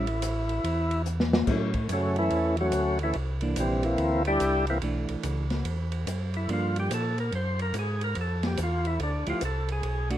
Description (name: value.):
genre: soul jazz organ trio.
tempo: 144 BPM.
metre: 4/4.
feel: swing 64% on 8ths.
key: unclear.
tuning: A4 = 440 Hz.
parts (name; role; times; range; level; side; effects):
percussive tonewheel organ; melody; 0.0-10.1 s; C3 to C5; -28 LUFS; equal; slow rotary speaker, overdrive.
hollow-body jazz guitar; accompaniment; 0.0-10.2 s; E3 to G4; -32 LUFS; right 2 dB; none.
mellow tonewheel organ; bass; 0.0-10.2 s; A1 to Bb2; -29 LUFS; equal; slow rotary speaker.
open jazz drum kit; drums; 0.1-10.2 s; crash cymbal, hi-hat, kick drum, ride cymbal, snare drum; -33 LUFS; equal; none.
room: moderate small room reverb, RT60 0.5 s.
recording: rough home demo mix.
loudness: -25 LUFS.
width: side -12 dB against mid.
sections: 0.0-1.5 A section; 1.5-10.2 B section.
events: drum fill 1.1-1.5; tonewheel organ solo 1.5-10.2.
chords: 0.0 A5; 1.5 A6; 3.1 C9; 4.8 Bm11; 6.5 Gm7; 7.3 F#sus2; 8.2 Fmaj7.